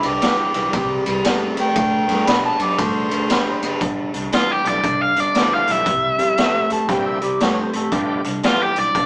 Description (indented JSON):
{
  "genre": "electric blues shuffle",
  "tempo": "117 BPM",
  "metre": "4/4",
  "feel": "swing 63% on 8ths",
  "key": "G mixolydian",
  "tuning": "A4 = 439 Hz",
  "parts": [
    { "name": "mellow harmonica", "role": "second line", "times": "0.0-8.2 s", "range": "G4 to B5", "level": "-21 LUFS", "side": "equal", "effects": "overdrive" },
    { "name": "electric guitar through a small old amp", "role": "riff", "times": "0.0-9.1 s", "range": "G2 to B3", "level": "-22 LUFS", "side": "equal", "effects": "none" },
    { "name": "upright bass", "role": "bass", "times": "0.0-9.1 s", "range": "F#1 to B2", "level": "-31 LUFS", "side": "equal", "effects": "none" },
    { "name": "raw garage drum kit", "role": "drums", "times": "0.0-9.1 s", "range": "hi-hat, kick drum, ride cymbal, snare drum", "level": "-21 LUFS", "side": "equal", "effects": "none" },
    { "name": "biting lead guitar", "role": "melody", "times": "4.3-9.1 s", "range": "F4 to F5", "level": "-17 LUFS", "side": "equal", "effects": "overdrive" },
    { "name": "bright tonewheel organ", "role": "accompaniment", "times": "4.6-8.7 s", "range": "A3 to G4", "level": "-28 LUFS", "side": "equal", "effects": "slow rotary speaker, overdrive" }
  ],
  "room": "moderate studio reverb, RT60 0.9 s",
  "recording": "band playing live in one room, small speaker sound",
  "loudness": "-16 LUFS",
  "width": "side -28 dB against mid",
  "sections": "0.0-3.8 A section; 3.8-9.1 B section",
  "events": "harmonica solo 0.0-3.8",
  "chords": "0.0 G; 0.7 C; 1.8 D7; 3.8 G7; 5.9 C7; 7.9 G7"
}